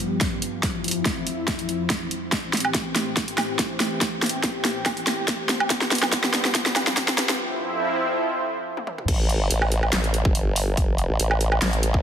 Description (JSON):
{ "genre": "heavy wobble dubstep", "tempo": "142 BPM", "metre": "4/4", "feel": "half-time", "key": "unclear", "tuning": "A4 = 441 Hz", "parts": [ { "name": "lush unison pad", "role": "sustained chords", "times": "0.0-9.1 s", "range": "F2 to G4", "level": "-27 LUFS", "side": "left 1 dB", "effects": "chorus, sidechain pumping" }, { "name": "big-room dance drum kit", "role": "drums", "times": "0.0-11.9 s", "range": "crash cymbal, handclaps, hi-hat, snare drum, toms, woodblock", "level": "-23 LUFS", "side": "equal", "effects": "overdrive" }, { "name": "electronic kick drum", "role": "drums", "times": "0.2-12.0 s", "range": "none", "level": "-26 LUFS", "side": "equal", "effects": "overdrive" }, { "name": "formant-sweep wobble bass", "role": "bass", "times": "9.1-12.0 s", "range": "G1 to A1", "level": "-22 LUFS", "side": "equal", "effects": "chorus, overdrive" } ], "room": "moderate lush hall reverb, RT60 1.7 s", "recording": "dense, heavily limited modern master, high-pass filter", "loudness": "-21 LUFS", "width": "side -8 dB against mid", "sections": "0.0-9.1 A section; 9.1-12.0 B section", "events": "build-up 0.0-9.1; drum fill 0.0-7.4, 8.8-9.1; filter sweep on analog synth pad 0.0-9.1; break 7.4-9.1; drop 9.1-12.0", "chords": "0.0 G7; 0.6 Cadd11/F; 2.3 Am7; 5.7 G7; 7.4 Cadd11/F; 9.1 Gsus2" }